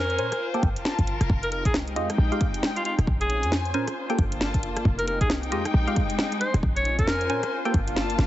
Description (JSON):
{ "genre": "UK garage, two-step garage", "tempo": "135 BPM", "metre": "4/4", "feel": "swing 60% on 16ths", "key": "F minor", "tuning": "A4 = 440 Hz", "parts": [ { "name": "bright alto saxophone", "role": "melody", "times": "0.0-7.6 s", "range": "F4 to Db5", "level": "-29 LUFS", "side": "equal", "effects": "dub echo" }, { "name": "short 808-style bass", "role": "bass", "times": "0.0-8.3 s", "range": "Eb1 to Bb2", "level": "-26 LUFS", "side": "equal", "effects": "none" }, { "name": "rich chamber string section", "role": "texture", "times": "0.0-8.3 s", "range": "Ab3 to A5", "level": "-31 LUFS", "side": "left 3 dB", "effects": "sidechain pumping" }, { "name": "house drum kit", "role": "drums", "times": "0.1-8.3 s", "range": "hi-hat, rim click, snare drum", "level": "-29 LUFS", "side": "equal", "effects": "small room ambience" }, { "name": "percussive organ stab", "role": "stabs", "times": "0.2-7.8 s", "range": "Ab3 to Ab5", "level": "-30 LUFS", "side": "right 1 dB", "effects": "chorus, phaser, dub echo" }, { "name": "electronic kick drum", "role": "drums", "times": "0.6-7.8 s", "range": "none", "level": "-26 LUFS", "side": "equal", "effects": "small room ambience" }, { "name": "warm analog pad", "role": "sustained chords", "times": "1.3-8.3 s", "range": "Bb3 to A4", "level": "-37 LUFS", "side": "left 1 dB", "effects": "lush chorus, sidechain pumping" }, { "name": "swell", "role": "sound effects", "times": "7.7-8.3 s", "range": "none", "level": "-34 LUFS", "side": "left 2 dB", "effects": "none" } ], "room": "light reverb", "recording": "heavily compressed radio sound, multiband compression, nothing above 7.9 kHz", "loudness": "-22 LUFS", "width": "side -14 dB against mid", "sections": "0.0-8.3 A section", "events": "filter sweep on synth stab 0.0-8.3; swell 7.7-8.3; kick drops out 8.0-8.3", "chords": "0.4 Gm9; 1.3 Fm9; 3.1 Bbm9; 4.0 Gm9; 4.9 Fm9; 6.6 Bbm9; 7.5 Gm9", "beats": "0.41 0.85 | 1.30 1.74 2.19 2.63 | 3.08 3.52 3.96 4.41 | 4.85 5.30 5.74 6.19 | 6.63 7.08 7.52 7.96" }